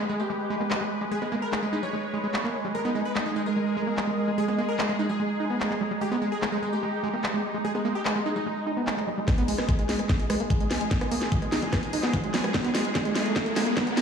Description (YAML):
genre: psychedelic trance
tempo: 147 BPM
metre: 4/4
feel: straight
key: G# harmonic minor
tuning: A4 = 440 Hz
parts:
  - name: supersaw stab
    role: melody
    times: 0.0-9.2 s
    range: G#3 to C#5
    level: -32 LUFS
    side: left 1 dB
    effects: phaser, cassette tape, sidechain pumping, digital delay
  - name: bubbling stepped-filter texture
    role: sustained chords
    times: 0.0-14.0 s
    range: G#3 to B4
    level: -34 LUFS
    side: left 1 dB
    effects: chorus, built-in reverb, vintage 12-bit sampler grit, sidechain pumping
  - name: overdriven acid bass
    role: riff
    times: 0.0-13.9 s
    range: G3 to D#4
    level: -30 LUFS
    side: equal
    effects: distortion, auto-pan, sidechain pumping, digital delay
  - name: warbly tape-like pad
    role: texture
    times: 0.0-14.0 s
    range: G#3 to A#5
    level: -32 LUFS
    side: right 3 dB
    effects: chorus, built-in reverb, sidechain pumping
  - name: drum and bass drum kit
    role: drums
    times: 0.7-14.0 s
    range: handclaps, hi-hat, rim click, snare drum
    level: -31 LUFS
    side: equal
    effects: none
  - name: electronic kick drum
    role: drums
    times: 9.3-13.8 s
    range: none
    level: -26 LUFS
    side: equal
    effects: none
  - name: riser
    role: sound effects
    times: 10.2-14.0 s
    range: none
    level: -32 LUFS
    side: right 1 dB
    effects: none
room: wet lush hall reverb, RT60 2.5 s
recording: played on a big sound system in a bare room, large studio reverb, high-pass filter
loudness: -24 LUFS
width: side -7 dB against mid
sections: 0.0-9.3 A section; 9.3-14.0 B section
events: build-up 9.3-14.0; drum fill 9.3-14.0; filter sweep 9.3-14.0; riser 10.2-14.0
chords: 0.0 G#5